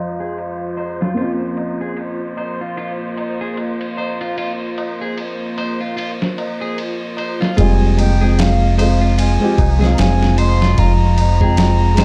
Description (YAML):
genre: trip hop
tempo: 75 BPM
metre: 4/4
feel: swing 58% on 16ths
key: F minor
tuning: A4 = 439 Hz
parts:
  - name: mellow wooden flute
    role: melody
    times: 0.0-0.7, 7.6-12.0 s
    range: F5 to C6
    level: -25 LUFS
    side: equal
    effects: none
  - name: felt-muted upright piano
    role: accompaniment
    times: 0.0-12.0 s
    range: G3 to G5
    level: -22 LUFS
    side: equal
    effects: harmonic tremolo
  - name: deep dark ambient pad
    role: sustained chords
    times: 0.0-12.0 s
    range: F3 to F5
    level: -28 LUFS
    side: equal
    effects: chorus, built-in reverb
  - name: wind-like tuned noise texture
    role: texture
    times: 0.0-7.6 s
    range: C5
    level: -38 LUFS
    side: equal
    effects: none
  - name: electric guitar at the edge of break-up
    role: arpeggios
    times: 0.2-12.0 s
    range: F4 to C5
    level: -31 LUFS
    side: equal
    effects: tape echo
  - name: tabla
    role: percussion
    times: 0.2-12.0 s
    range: none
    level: -32 LUFS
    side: equal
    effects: none
  - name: dusty soul sampler-style drum kit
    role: drums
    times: 0.4-12.0 s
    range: kick drum, ride cymbal, snare drum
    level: -25 LUFS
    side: equal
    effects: overdrive, low-pass filter on cymbals, low-pass filter on snare, low-pass filter on kick, low-pass filter on room
  - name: deep dub fingered electric bass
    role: bass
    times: 7.6-12.0 s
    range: F1 to C2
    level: -16 LUFS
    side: equal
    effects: tube saturation
room: light reverb, digital ambience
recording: dark, warm production, low-pass filter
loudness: -17 LUFS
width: mono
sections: 0.0-7.6 A section; 7.6-12.0 B section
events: filter sweep on clean electric guitar 0.0-7.6; filter sweep 0.0-7.6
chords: 0.0 Fm; 1.2 Bbmadd9; 7.6 Fmadd9